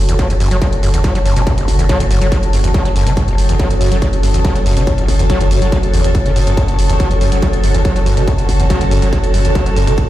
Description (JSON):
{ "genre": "driving peak-time techno", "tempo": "141 BPM", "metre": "4/4", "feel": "straight", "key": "F# minor", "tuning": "A4 = 440 Hz", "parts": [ { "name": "saturated sub bass", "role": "bass", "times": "0.0-10.0 s", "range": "F#1", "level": "-17 LUFS", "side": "equal", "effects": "overdrive, sidechain pumping, low-pass filter" }, { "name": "metallic inharmonic drone", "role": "drone", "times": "0.2-10.1 s", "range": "F#3 to C#4", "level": "-25 LUFS", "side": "left 2 dB", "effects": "chorus, built-in reverb, sidechain pumping" }, { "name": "ethereal airy pad", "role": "texture", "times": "0.0-10.1 s", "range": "F#4 to A5", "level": "-21 LUFS", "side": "equal", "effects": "ensemble chorus, built-in reverb, phaser, sidechain pumping" }, { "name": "screaming distorted acid line", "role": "riff", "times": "0.1-10.0 s", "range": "F#1 to F#3", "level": "-19 LUFS", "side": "equal", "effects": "distortion, chorus, sidechain pumping, ping-pong delay" }, { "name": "electronic hi-hat", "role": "drums", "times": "0.1-10.1 s", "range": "none", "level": "-28 LUFS", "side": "equal", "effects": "sidechain pumping on hats" }, { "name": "electronic kick drum", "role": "drums", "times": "0.2-10.1 s", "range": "none", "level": "-16 LUFS", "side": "equal", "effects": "distortion" } ], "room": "little or no reverb", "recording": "played on a big sound system in a bare room, stone room reverb", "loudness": "-11 LUFS", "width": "side -14 dB against mid", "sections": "0.0-10.1 A section", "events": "none", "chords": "0.0 F#m" }